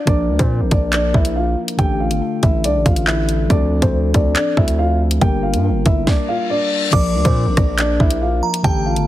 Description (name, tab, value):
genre	hip hop, drill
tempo	140 BPM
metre	4/4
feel	half-time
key	unclear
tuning	A4 = 440 Hz
part	dark concert grand piano	melody	0.0-9.1 s	C4 to G5	-21 LUFS	left 1 dB	low-pass filter, tape echo
part	muted felt-like synth keys	accompaniment	0.1-9.1 s	D3 to Bb4	-23 LUFS	left 2 dB	chorus, low-pass filter
part	distorted 808-style bass	bass	0.1-9.1 s	G1 to Bb2	-19 LUFS	equal	distortion
part	drill drum kit	drums	0.1-9.1 s	crash cymbal, handclaps, hi-hat, kick drum, rim click, snare drum	-17 LUFS	equal	none
part	reverse cymbal	sound effects	6.3-6.9 s	none	-24 LUFS	left 7 dB	none
part	delicate synth tine bell	second line	6.9-9.1 s	A5 to D6	-24 LUFS	right 4 dB	chorus, tremolo, tape echo
room	digital ambience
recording	heavily compressed radio sound, multiband compression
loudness	-14 LUFS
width	side -14 dB against mid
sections	0.0-6.9 A section; 6.9-9.1 B section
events	reverse cymbal 6.3-6.9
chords	0.1 Bb; 1.8 Asus4; 3.5 Dm7; 5.2 Gm; 6.9 Bb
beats	| 0.07 0.50 0.93 1.36 | 1.79 2.21 2.64 3.07 | 3.50 3.93 4.36 4.79 | 5.21 5.64 6.07 6.50 | 6.93 7.36 7.79 8.21 | 8.64